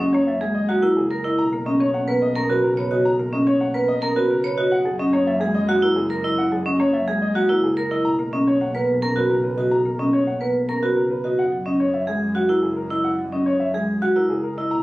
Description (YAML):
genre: classical, minimalist pattern music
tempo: 108 BPM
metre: 3/4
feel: straight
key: F# mixolydian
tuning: A4 = 440 Hz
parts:
  - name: warm baby grand piano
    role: melody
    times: 0.0-14.8 s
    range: G#4 to A#5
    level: -26 LUFS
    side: left 1 dB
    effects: none
  - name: marimba with medium mallets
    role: accompaniment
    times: 0.0-14.3 s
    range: C#3 to C#4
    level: -27 LUFS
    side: equal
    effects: none
  - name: vibraphone with hard mallets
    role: arpeggios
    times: 0.0-14.8 s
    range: C#4 to C#5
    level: -20 LUFS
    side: right 1 dB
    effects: none
  - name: clear double bass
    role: bass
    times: 0.0-14.8 s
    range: B1 to F#2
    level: -30 LUFS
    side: equal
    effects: none
room: light reverb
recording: recorded on a phone in the room, club reverb, faint mains hum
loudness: -18 LUFS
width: side -18 dB against mid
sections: 0.0-14.8 A section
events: none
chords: 0.0 F#13; 1.4 Bmaj7; 4.7 F#13; 8.0 Bmaj7; 11.4 F#13